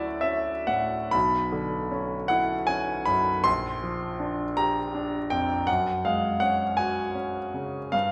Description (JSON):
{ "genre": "classical, impressionist solo piano", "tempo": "53 BPM (dotted quarters)", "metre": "6/8", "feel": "uneven beats, rubato", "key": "unclear", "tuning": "A4 = 440 Hz", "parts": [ { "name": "clear concert grand piano", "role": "solo", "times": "0.0-8.1 s", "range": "Bb1 to C6", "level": "-27 LUFS", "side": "equal", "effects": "none" } ], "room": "wet recital hall reverb, RT60 1.6 s", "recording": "recorded in a church or concert hall", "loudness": "-27 LUFS", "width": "mono", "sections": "0.0-8.1 A section", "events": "none", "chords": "0.0 Dmaj9; 1.1 Bmadd9; 3.5 Bb6; 5.7 Gbsus2" }